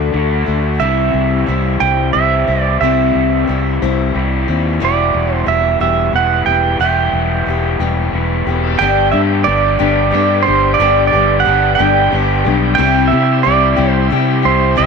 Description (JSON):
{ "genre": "folk rock and heartland rock", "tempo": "60 BPM (dotted quarters)", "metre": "6/8", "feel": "straight", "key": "G major", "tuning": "A4 = 442 Hz", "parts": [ { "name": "pedal steel guitar", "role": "melody", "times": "0.0-14.9 s", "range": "C5 to G5", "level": "-15 LUFS", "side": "right 10 dB", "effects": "none" }, { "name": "picked steel-string acoustic guitar", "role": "accompaniment", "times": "0.0-14.9 s", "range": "G2 to C5", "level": "-19 LUFS", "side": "left 16 dB", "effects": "none" }, { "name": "raw garage guitar", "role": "riff", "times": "0.0-14.9 s", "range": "E2 to G4", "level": "-19 LUFS", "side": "left 1 dB", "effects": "overdrive" }, { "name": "fingered electric bass", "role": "bass", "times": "0.0-14.9 s", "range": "E1 to C3", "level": "-17 LUFS", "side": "left 1 dB", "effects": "none" }, { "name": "bright tonewheel organ", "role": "sustained chords", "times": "8.5-14.9 s", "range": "G3 to C5", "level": "-25 LUFS", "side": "left 1 dB", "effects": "slow rotary speaker, overdrive" } ], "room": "light reverb, digital ambience", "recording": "1960s-style stereo with parts hard left and right", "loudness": "-11 LUFS", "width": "side -5 dB against mid", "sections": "0.0-8.8 A section; 8.8-14.9 B section", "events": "none", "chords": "0.0 D; 0.8 C; 4.8 Emadd9; 8.8 G; 12.8 C" }